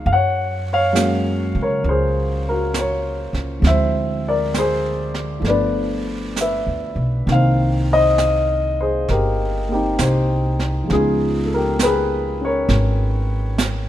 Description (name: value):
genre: jazz ballad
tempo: 67 BPM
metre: 4/4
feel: swing 68% on 8ths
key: unclear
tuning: A4 = 440 Hz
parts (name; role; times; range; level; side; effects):
- dark grand piano; accompaniment; 0.0-13.9 s; Eb3 to Gb5; -19 LUFS; left 1 dB; none
- upright bass; bass; 0.1-13.9 s; G1 to Db3; -21 LUFS; equal; none
- jazz brush drum kit; drums; 0.1-13.9 s; brushed snare drum, hi-hat, snare drum; -26 LUFS; right 4 dB; none
room: little or no reverb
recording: minimal, uncompressed stereo recording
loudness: -17 LUFS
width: side -12 dB against mid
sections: 0.0-13.9 A section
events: none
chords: 0.1 Gbmaj9; 3.6 Dm7b5; 5.4 G7; 7.3 Cm7; 10.9 Db13